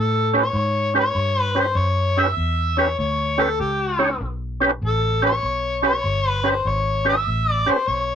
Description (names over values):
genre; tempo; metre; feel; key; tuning
electric blues shuffle; 98 BPM; 4/4; swing 67% on 8ths; A mixolydian; A4 = 441 Hz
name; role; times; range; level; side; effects
overdriven harmonica; melody; 0.0-8.2 s; G4 to E5; -21 LUFS; left 2 dB; slapback echo
vintage muted fingered electric bass; bass; 0.0-8.2 s; G1 to A2; -24 LUFS; equal; none
percussive tonewheel organ; accompaniment; 0.3-7.8 s; C#4 to C#5; -18 LUFS; right 2 dB; slow rotary speaker, overdrive, chorus vibrato
room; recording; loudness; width
moderate booth ambience, RT60 0.2 s; rough rehearsal-room recording; -18 LUFS; side -8 dB against mid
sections
0.0-8.2 A section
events
none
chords
0.0 A9